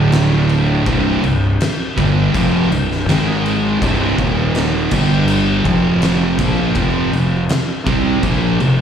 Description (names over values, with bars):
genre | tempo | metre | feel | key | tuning
stoner and doom metal | 81 BPM | 4/4 | straight | C minor | A4 = 440 Hz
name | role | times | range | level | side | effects
high-gain distorted guitar | riff | 0.0-8.8 s | C2 to C4 | -23 LUFS | equal | distortion, slapback echo
thick fuzz guitar | riff | 0.0-8.8 s | C2 to C4 | -20 LUFS | left 8 dB | distortion
thick fuzz guitar | riff | 0.0-8.8 s | C2 to C4 | -18 LUFS | right 7 dB | distortion
fuzz fingered electric bass | bass | 0.0-8.8 s | C1 to C2 | -20 LUFS | left 1 dB | overdrive
oversized low-tuned drum kit | drums | 0.1-8.8 s | crash cymbal, kick drum, snare drum | -20 LUFS | left 1 dB | none
room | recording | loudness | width
little or no reverb | live gig heard through the venue's PA, club reverb | -13 LUFS | side -8 dB against mid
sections
0.0-8.8 A section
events
none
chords
0.0 D5; 0.9 C5; 3.1 Ab5; 3.8 C5; 4.2 Eb5; 4.9 G5; 5.7 F5; 6.4 Bb5; 6.8 F5